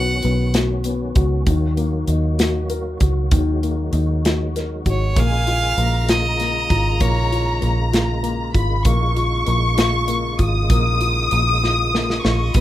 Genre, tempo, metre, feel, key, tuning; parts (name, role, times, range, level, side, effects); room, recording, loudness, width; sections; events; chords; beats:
six-eight pop ballad; 65 BPM (dotted quarters); 6/8; straight; Bb phrygian; A4 = 440 Hz
bright violin; melody; 0.0-0.5, 4.9-7.7, 12.3-12.6 s; Db5 to F#5; -23 LUFS; right 2 dB
dark baby grand piano; accompaniment; 0.0-12.6 s; Eb3 to Bb4; -25 LUFS; left 5 dB
percussive tonewheel organ; sustained chords; 0.0-12.6 s; Db3 to F#4; -31 LUFS; right 2 dB; overdrive, chorus vibrato, fast rotary speaker
vintage muted fingered electric bass; bass; 0.0-12.6 s; Ab1 to Eb2; -20 LUFS; right 1 dB
modern studio drum kit; drums; 0.2-12.6 s; hi-hat, kick drum, snare drum; -21 LUFS; equal
warm studio violin section; second line; 5.2-12.6 s; Ab5 to Eb6; -23 LUFS; left 2 dB
little or no reverb; rough home demo mix; -16 LUFS; side -13 dB against mid
0.0-12.6 A section
drum fill 11.6-12.5
0.0 B; 1.5 Ebm; 5.2 Bbm7
0.55 | 1.47 2.39 | 3.32 4.24 | 5.16 6.08 | 7.01 7.93 | 8.86 9.78 | 10.70 11.62 | 12.55